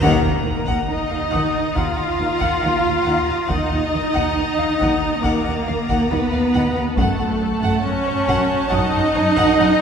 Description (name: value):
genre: cinematic, suspense film score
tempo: 69 BPM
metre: 4/4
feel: straight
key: unclear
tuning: A4 = 440 Hz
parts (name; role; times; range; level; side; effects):
- clear chamber violin section; melody; 0.0-9.8 s; A4 to F5; -28 LUFS; left 2 dB; none
- warm chamber violin section; second line; 0.0-9.8 s; Db5 to Bb5; -25 LUFS; left 1 dB; none
- rich chamber viola section; accompaniment; 0.0-9.8 s; A3 to F4; -23 LUFS; left 2 dB; none
- rich symphonic cello section; riff; 0.0-9.8 s; Gb2 to Eb4; -27 LUFS; equal; none
- bright chamber double bass section; bass; 0.0-9.7 s; Eb2 to Gb2; -25 LUFS; right 1 dB; none
- rich chamber cello section; bass; 0.0-9.8 s; A3 to F4; -22 LUFS; right 3 dB; none
- taiko ensemble; drums; 0.0-9.8 s; none; -30 LUFS; equal; none
- riser and impact; sound effects; 0.0-3.5 s; none; -29 LUFS; equal; none
- rich chamber violin section; texture; 0.0-9.8 s; Eb6 to Db7; -35 LUFS; left 3 dB; none
- concert harp; texture; 1.3-7.8 s; D6 to Eb6; -33 LUFS; left 2 dB; none
room: wet concert hall reverb, RT60 2.5 s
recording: recorded in a church or concert hall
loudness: -17 LUFS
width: side -7 dB against mid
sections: 0.0-9.8 A section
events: band accent 0.0-0.9; impact 0.0-3.5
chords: 0.0 Ebmadd9; 7.0 Gbm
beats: | 0.02 0.89 1.76 2.63 | 3.50 4.37 5.24 6.11 | 6.98 7.85 8.72 9.59